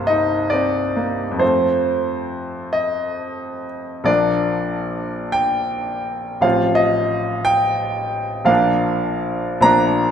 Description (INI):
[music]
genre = classical, romantic nocturne for solo piano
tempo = 44-61 BPM (dotted quarters)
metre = 6/8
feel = rubato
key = Bb major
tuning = A4 = 442 Hz
[part]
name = bright grand piano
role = solo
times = 0.0-10.1 s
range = A1 to Bb5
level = -17 LUFS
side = equal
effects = none
[sound]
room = moderate concert hall reverb, RT60 2.4 s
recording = minimal, uncompressed stereo recording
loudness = -17 LUFS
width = side -8 dB against mid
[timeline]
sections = 0.0-4.1 A section; 4.1-10.1 B section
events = none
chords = 0.0 Cm7; 1.4 F; 4.1 Bb; 6.4 F7/A; 8.5 Bb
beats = 0.09 | 1.41 2.76 | 4.08 5.35 | 6.44 7.47 | 8.49 9.65